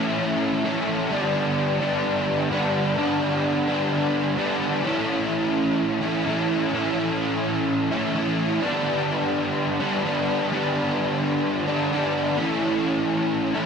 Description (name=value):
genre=rock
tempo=128 BPM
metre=4/4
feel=straight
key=A mixolydian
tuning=A4 = 440 Hz
part: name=overdriven electric guitar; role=solo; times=0.0-13.7 s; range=G2 to E4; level=-21 LUFS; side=equal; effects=analog chorus, analog delay
room=wet echo chamber reverb, RT60 1.7 s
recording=none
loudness=-21 LUFS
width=side -6 dB against mid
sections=0.0-4.9 A section; 4.9-13.7 B section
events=none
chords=0.0 A; 1.1 G; 4.9 A; 8.6 G; 12.4 A